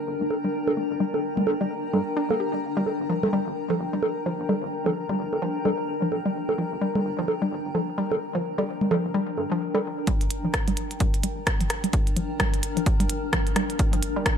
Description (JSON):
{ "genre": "minimal techno", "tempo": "129 BPM", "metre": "4/4", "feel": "swing 59% on 16ths", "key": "G minor", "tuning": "A4 = 440 Hz", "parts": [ { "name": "granular cloud pad", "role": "texture", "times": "0.0-14.4 s", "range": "D4 to Bb5", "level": "-29 LUFS", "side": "left 2 dB", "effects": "built-in reverb, sidechain pumping" }, { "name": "rubbery square bass", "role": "bass", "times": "0.1-9.5 s", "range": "D1 to G2", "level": "-38 LUFS", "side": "equal", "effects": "sidechain pumping, high-pass filter" }, { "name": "hollow square pluck", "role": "riff", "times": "0.2-14.2 s", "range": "F3 to G4", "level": "-28 LUFS", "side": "equal", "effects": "chorus, sidechain pumping, ping-pong delay" }, { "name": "bongos and congas", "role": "percussion", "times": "0.3-9.8 s", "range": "none", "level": "-27 LUFS", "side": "right 2 dB", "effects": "ping-pong delay" }, { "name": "electronic kick drum", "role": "drums", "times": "10.1-14.4 s", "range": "none", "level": "-24 LUFS", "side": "equal", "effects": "none" }, { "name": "minimal click drum kit", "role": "drums", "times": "10.1-14.4 s", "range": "hi-hat, rim click", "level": "-27 LUFS", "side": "equal", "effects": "overdrive, high-pass filter on hats, low-pass filter on hats, high-pass filter on snare, low-pass filter on snare" } ], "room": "light reverb", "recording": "none", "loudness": "-23 LUFS", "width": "side -7 dB against mid", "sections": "0.0-10.1 A section; 10.1-14.4 B section", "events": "build-up 10.1-14.4; filter sweep on synth arpeggio sound 10.1-14.4", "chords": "0.0 Gm", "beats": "0.30 | 0.77 1.24 1.70 2.17 | 2.63 3.10 3.56 4.03 | 4.49 4.96 5.42 5.89 | 6.35 6.82 7.28 7.75 | 8.21 8.68 9.14 9.61 | 10.07 10.54 11.00 11.47 | 11.93 12.40 12.86 13.33 | 13.79 14.26" }